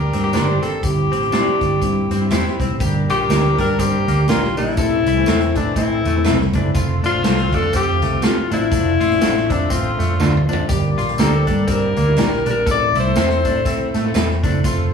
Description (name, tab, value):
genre	uptempo 1960s-style soul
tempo	122 BPM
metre	4/4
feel	swing 59% on 8ths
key	G dorian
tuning	A4 = 441 Hz
part	breathy tenor saxophone	melody	0.0-13.9 s	D4 to D5	-20 LUFS	left 3 dB	slapback echo
part	warm horn section	second line	0.0-14.9 s	E3 to F5	-29 LUFS	equal	slapback echo
part	bright upright piano	accompaniment	0.0-14.9 s	E3 to A5	-27 LUFS	left 4 dB	slapback echo
part	vintage muted fingered electric bass	bass	0.0-14.9 s	F1 to A2	-20 LUFS	right 1 dB	none
part	direct-recorded clean electric guitar	riff	0.1-14.9 s	A3 to A4	-28 LUFS	left 4 dB	wide subtle chorus, slapback echo
part	swinging big-band drum kit	drums	0.1-14.8 s	hi-hat, kick drum, snare drum, toms	-23 LUFS	equal	none
part	tambourine	percussion	0.1-14.8 s	none	-37 LUFS	right 3 dB	none
part	electric guitar through a small old amp	stabs	0.3-14.3 s	A3 to C5	-26 LUFS	right 6 dB	slapback echo
room	light reverb, small room ambience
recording	live gig heard through the venue's PA, club reverb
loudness	-15 LUFS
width	side -6 dB against mid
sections	0.0-2.8 A section; 2.8-14.9 B section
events	drum fill 10.2-10.7; upright piano fill 13.7-14.6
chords	0.0 Gm; 0.8 C/G; 2.8 Gm; 4.8 Am; 6.7 F; 8.7 Dm/F; 10.7 Gm; 12.7 Am